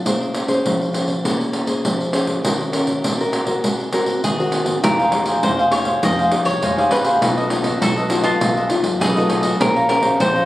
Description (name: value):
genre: samba and choro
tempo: 101 BPM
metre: 4/4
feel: straight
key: F minor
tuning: A4 = 440 Hz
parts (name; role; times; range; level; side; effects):
- nylon-string guitar; accompaniment; 0.0-10.5 s; Bb2 to C5; -21 LUFS; left 2 dB; none
- pandeiro; percussion; 0.1-10.5 s; none; -21 LUFS; right 1 dB; none
- cavaquinho; melody; 4.2-10.5 s; E#4 to Eb5; -21 LUFS; equal; none
- cavaquinho; accompaniment; 4.8-10.5 s; Eb4 to Bb5; -20 LUFS; equal; none
- upright bass; bass; 4.8-10.5 s; F1 to F#2; -28 LUFS; equal; none
room: moderate large studio reverb, RT60 1.0 s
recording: recorded on a phone in the room, club reverb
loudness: -16 LUFS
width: side -15 dB against mid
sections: 0.0-4.8 A section; 4.8-10.5 B section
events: none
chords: 0.1 Bbm9; 2.4 Ebm7; 3.6 Ab9; 4.8 Fm9; 7.2 B7#11; 9.6 Bbm9